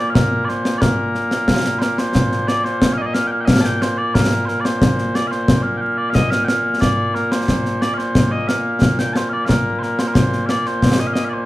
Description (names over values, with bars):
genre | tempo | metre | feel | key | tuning
scottish traditional, Scottish pipe music | 90 BPM | 2/4 | straight | Bb major | A4 = 442 Hz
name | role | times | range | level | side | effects
mellow small bagpipes | melody | 0.0-11.5 s | Bb2 to A5 | -19 LUFS | equal | none
concert snare drum and concert bass drum | drums | 0.2-11.3 s | none | -17 LUFS | equal | none
room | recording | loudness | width
moderate large studio reverb, RT60 0.9 s | band playing live in one room, vinyl crackle | -15 LUFS | side -16 dB against mid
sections
0.0-2.2 A section; 2.2-11.5 B section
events
none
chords
none